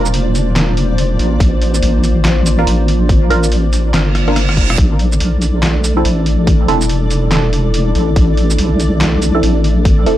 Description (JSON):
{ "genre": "deep dubstep", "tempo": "142 BPM", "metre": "4/4", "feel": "swing 61% on 16ths, half-time", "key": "A phrygian", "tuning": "A4 = 441 Hz", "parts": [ { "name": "dark analog pad", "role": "sustained chords", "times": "0.0-10.2 s", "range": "A3 to C5", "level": "-21 LUFS", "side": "equal", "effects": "chorus, phaser" }, { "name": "deep soft wobble bass", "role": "bass", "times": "0.0-10.2 s", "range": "E1 to Bb1", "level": "-13 LUFS", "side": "equal", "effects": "chorus, tube saturation" }, { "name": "flickering grainy texture", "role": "texture", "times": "0.0-10.2 s", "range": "D4 to D5", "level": "-24 LUFS", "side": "equal", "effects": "built-in reverb" }, { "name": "trip hop sampler-style drum kit", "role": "drums", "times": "0.1-10.2 s", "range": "handclaps, hi-hat, rim click, shaker, snare drum", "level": "-19 LUFS", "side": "equal", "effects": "none" }, { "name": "electronic kick drum", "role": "drums", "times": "1.4-10.0 s", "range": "none", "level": "-12 LUFS", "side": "equal", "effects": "none" }, { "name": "filtered dub chord stab", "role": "stabs", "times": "2.6-6.8, 9.3-10.2 s", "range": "C4 to Bb4", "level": "-20 LUFS", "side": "right 2 dB", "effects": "phaser, dub echo" }, { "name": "reverse cymbal", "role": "sound effects", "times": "4.1-4.8 s", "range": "none", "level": "-21 LUFS", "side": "right 6 dB", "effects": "none" } ], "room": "little or no reverb", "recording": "dry, gritty hardware recording", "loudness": "-11 LUFS", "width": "side -13 dB against mid", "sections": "0.0-10.2 A section", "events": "reverse cymbal 4.1-4.8; drum fill 4.1-4.8", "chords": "0.0 Bb; 4.8 A5" }